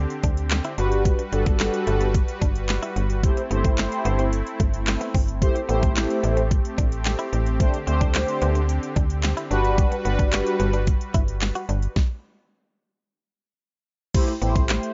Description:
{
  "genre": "dance-pop",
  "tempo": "110 BPM",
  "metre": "4/4",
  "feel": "straight",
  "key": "G major",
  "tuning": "A4 = 440 Hz",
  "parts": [
    { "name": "soft supersaw", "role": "sustained chords", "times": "0.0-11.9 s", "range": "D3 to B4", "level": "-33 LUFS", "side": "equal", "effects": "sidechain pumping" },
    { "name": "slap-like FM bass", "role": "bass", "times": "0.0-14.8 s", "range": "G1 to D2", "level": "-26 LUFS", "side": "equal", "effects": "sidechain pumping" },
    { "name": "pop drum kit", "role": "drums", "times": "0.1-14.9 s", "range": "crash cymbal, handclaps, hi-hat, kick drum, snare drum", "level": "-25 LUFS", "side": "equal", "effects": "none" },
    { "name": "direct-recorded clean electric guitar", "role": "riff", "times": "0.2-14.7 s", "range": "G3 to F#4", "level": "-35 LUFS", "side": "equal", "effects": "subtle chorus" },
    { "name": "mellow synth brass", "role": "accompaniment", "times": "0.8-10.8, 14.1-14.9 s", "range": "G3 to C5", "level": "-27 LUFS", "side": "equal", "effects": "chorus, phaser, sidechain pumping" }
  ],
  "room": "little or no reverb",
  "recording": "rough home demo mix, nothing above 7.5 kHz",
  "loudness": "-23 LUFS",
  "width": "mono",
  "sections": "0.0-14.1 A section",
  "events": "stop 12.0-14.1",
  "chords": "0.0 Am7 (rootless); 0.8 Gmaj7; 3.2 C6/G; 5.4 Am7; 7.6 D7sus4; 9.5 Gmaj7; 12.0 N.C.; 14.1 Am7",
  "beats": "0.51 | 1.05 1.60 2.15 2.69 | 3.24 3.78 4.33 4.87 | 5.42 5.96 6.51 7.05 | 7.60 8.14 8.69 9.24 | 9.78 10.33 10.87 11.42 | 11.96 12.51 13.05 13.60 | 14.14 14.69"
}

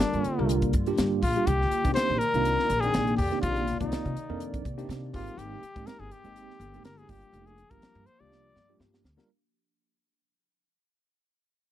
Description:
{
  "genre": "electric jazz fusion",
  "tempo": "123 BPM",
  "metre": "4/4",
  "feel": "swing 54% on 16ths",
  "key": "C minor",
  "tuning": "A4 = 440 Hz",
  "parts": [
    { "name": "warm trumpet", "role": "melody", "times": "0.0-8.8 s", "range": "D4 to D5", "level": "-29 LUFS", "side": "left 2 dB", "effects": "none" },
    { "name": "tine electric piano", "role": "accompaniment", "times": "0.0-9.3 s", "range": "G3 to G5", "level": "-32 LUFS", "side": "right 2 dB", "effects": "medium stereo tremolo" },
    { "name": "warbly tape-like pad", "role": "sustained chords", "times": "0.0-9.3 s", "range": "C3 to D5", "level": "-36 LUFS", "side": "right 2 dB", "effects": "chorus, built-in reverb" },
    { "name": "crisp fusion drum kit", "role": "drums", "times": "0.0-9.3 s", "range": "hi-hat, kick drum, snare drum", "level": "-31 LUFS", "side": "equal", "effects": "none" },
    { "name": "upright bass", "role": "bass", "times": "0.1-9.2 s", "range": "F1 to C3", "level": "-31 LUFS", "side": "equal", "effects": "none" }
  ],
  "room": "little or no reverb",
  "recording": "dry, close 1970s-style studio recording",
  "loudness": "-24 LUFS",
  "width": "side -12 dB against mid",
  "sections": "0.0-9.3 A section",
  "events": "fade-out 0.0-9.3; drum fill 8.3-9.3",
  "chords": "0.0 Gm7; 1.5 Cm9; 5.1 Abmaj7; 7.1 Gm7",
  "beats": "0.01 0.50 0.99 | 1.48 1.97 2.45 2.94 | 3.43 3.92 4.41 4.90 | 5.38 5.87 6.36 6.85 | 7.34 7.83 8.31 8.80"
}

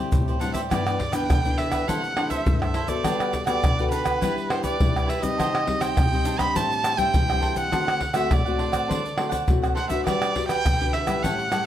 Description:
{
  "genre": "samba and choro",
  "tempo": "103 BPM",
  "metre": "4/4",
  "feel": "straight",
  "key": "G major",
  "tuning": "A4 = 440 Hz",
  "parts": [
    { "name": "cavaquinho", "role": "accompaniment", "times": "0.0-11.7 s", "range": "D4 to G5", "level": "-29 LUFS", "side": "right 2 dB", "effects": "none" },
    { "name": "nylon-string guitar", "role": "accompaniment", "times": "0.0-11.7 s", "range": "G2 to B4", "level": "-29 LUFS", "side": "left 4 dB", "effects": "none" },
    { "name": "egg shaker, surdo, pandeiro and tamborim", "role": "percussion", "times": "0.1-11.7 s", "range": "none", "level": "-24 LUFS", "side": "equal", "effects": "none" },
    { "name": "bright erhu", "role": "melody", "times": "0.4-11.7 s", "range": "B4 to B5", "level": "-27 LUFS", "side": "right 3 dB", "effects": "plate reverb" }
  ],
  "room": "moderate large studio reverb, RT60 0.9 s",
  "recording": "none",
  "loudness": "-21 LUFS",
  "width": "side -11 dB against mid",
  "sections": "0.7-11.7 A section",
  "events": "none",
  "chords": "0.0 D9sus4; 0.7 G6; 1.9 C69; 3.0 Gmaj9; 4.2 Em7/G; 5.4 Cmadd9; 6.6 Am7; 7.7 D7; 10.1 Gmaj7",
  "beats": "0.12 | 0.71 1.29 1.88 2.46 | 3.05 3.63 4.22 4.80 | 5.39 5.97 6.56 7.14 | 7.73 8.31 8.90 9.48 | 10.07 10.65 11.23"
}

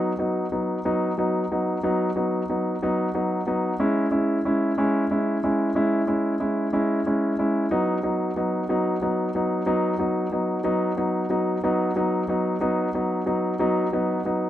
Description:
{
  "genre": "pop",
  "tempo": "61 BPM (dotted quarters)",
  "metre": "6/8",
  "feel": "straight",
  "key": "unclear",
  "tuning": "A4 = 440 Hz",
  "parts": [
    { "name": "clear concert grand piano", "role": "solo", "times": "0.0-14.5 s", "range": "F#3 to E4", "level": "-22 LUFS", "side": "equal", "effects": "digital delay" }
  ],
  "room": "light reverb",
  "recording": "rough home demo mix",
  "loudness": "-22 LUFS",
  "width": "side -12 dB against mid",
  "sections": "0.0-14.5 A section",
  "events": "none",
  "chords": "0.0 B; 3.8 C#m; 7.7 B",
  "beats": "0.84 | 1.82 2.81 | 3.79 4.77 | 5.75 6.73 | 7.71 8.70 | 9.68 10.66 | 11.64 12.62 | 13.60"
}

